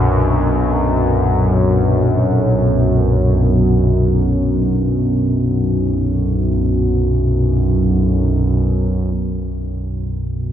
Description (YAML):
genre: dark ambient drone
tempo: free time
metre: none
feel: none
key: unclear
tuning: A4 = 439 Hz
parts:
  - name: quartz singing bowl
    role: arpeggios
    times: 0.0-5.3 s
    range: A#2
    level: -23 LUFS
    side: left 2 dB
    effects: diffuse ambient delay
  - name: analog drone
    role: drone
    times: 0.0-10.5 s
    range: B1 to F#2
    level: -14 LUFS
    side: equal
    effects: chorus
  - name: quartz singing bowl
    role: texture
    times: 0.0-9.2 s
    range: A#4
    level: -36 LUFS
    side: right 6 dB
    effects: none
room: wet cathedral reverb, RT60 6.8 s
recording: none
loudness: -14 LUFS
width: side -10 dB against mid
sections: 0.0-9.1 A section; 9.1-10.5 B section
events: none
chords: 0.0 B5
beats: free time